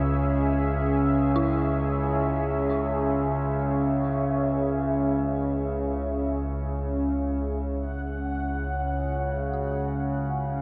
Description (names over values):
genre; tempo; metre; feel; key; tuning
dark ambient drone; free time; none; none; C# minor; A4 = 441 Hz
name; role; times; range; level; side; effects
deep dark ambient pad; sustained chords; 0.0-10.6 s; C#4 to E5; -30 LUFS; equal; chorus, built-in reverb, shimmer reverb
dark detuned synth bell; arpeggios; 0.0-10.6 s; E4 to F#4; -38 LUFS; equal; chorus, diffuse ambient delay, shimmer reverb
analog drone; drone; 0.0-10.6 s; C#2 to C#3; -29 LUFS; equal; chorus
bubbling stepped-filter texture; texture; 7.8-10.6 s; F#5; -37 LUFS; equal; chorus, built-in reverb, shimmer reverb
room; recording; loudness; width
wet lush hall reverb, RT60 2.4 s; dreamy mix soaked in reverb; -26 LUFS; mono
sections
0.0-7.8 A section; 7.8-10.6 B section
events
none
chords
0.0 C#m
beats
free time